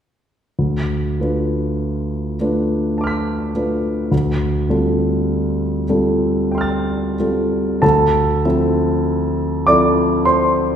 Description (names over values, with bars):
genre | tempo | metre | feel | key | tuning
classical, impressionist solo piano | 43-53 BPM | 3/4 | rubato | D minor | A4 = 442 Hz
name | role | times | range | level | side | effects
clear concert grand piano | solo | 0.6-10.8 s | D2 to B6 | -16 LUFS | equal | none
room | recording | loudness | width
wet scoring stage reverb, RT60 1.7 s | heard from further back in the room | -16 LUFS | side -8 dB against mid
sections
0.6-7.8 A section; 7.8-10.8 B section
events
none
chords
0.6 Dm6; 4.1 Fadd9/D; 7.8 Dm9